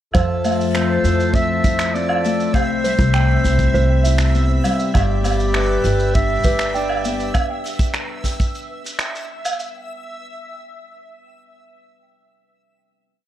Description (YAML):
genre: folktronica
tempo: 100 BPM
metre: 4/4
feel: straight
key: unclear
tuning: A4 = 440 Hz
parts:
  - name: small celesta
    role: second line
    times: 0.1-7.4 s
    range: B4 to G5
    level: -28 LUFS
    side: right 5 dB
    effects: tape echo
  - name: hand-pumped harmonium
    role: sustained chords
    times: 0.1-7.3 s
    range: C3 to B5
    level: -25 LUFS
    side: left 1 dB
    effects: none
  - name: Celtic harp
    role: arpeggios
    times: 0.1-12.3 s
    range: G2 to G4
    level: -24 LUFS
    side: left 6 dB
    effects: low-pass filter
  - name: upright bass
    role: bass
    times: 0.1-7.3 s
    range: G1 to F2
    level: -19 LUFS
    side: equal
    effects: none
  - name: jazz brush drum kit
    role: drums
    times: 0.1-9.7 s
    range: finger snaps, hi-hat, shaker, woodblock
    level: -25 LUFS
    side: right 2 dB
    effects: none
  - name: kick drum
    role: drums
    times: 0.1-8.5 s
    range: none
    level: -19 LUFS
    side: equal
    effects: none
  - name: backwards swelling texture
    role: texture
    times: 1.2-9.8 s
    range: E5 to E6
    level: -32 LUFS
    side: right 3 dB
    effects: built-in reverb
  - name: clear clarinet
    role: melody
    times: 0.7-7.3 s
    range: B4 to E5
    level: -23 LUFS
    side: right 1 dB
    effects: tape echo
room: little or no reverb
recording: dry, close 1970s-style studio recording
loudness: -16 LUFS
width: side -12 dB against mid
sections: 0.1-9.7 groove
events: filter sweep on harp 0.1-7.3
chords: 0.1 Fmaj7; 2.5 Cmaj7; 4.9 G; 7.3 N.C.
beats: | 0.14 0.74 1.34 1.94 | 2.54 3.14 3.74 4.34 | 4.94 5.54 6.14 6.74 | 7.34 7.94 8.54 9.14